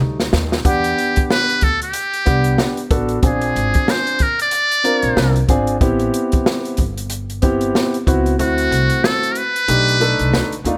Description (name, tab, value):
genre	hip hop, jazz-hop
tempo	93 BPM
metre	4/4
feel	swing 59% on 16ths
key	E minor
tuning	A4 = 440 Hz
part	dark baby grand piano	accompaniment	0.0-10.8 s	G3 to F#5	-22 LUFS	equal	none
part	upright bass	bass	0.0-10.8 s	G1 to E2	-23 LUFS	equal	none
part	open jazz drum kit	drums	0.2-10.8 s	hi-hat, kick drum, snare drum	-21 LUFS	equal	none
part	trumpet with metal mute	melody	0.7-10.7 s	F#4 to D5	-20 LUFS	equal	none
room	little or no reverb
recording	none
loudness	-17 LUFS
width	mono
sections	0.6-10.8 A section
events	drum fill 0.0-0.6; kick muted 8.4-10.8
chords	0.0 B7#9b13 (rootless); 0.6 Em9 (rootless); 3.2 A#9; 5.8 Am9 (rootless); 8.4 D7; 9.7 B7alt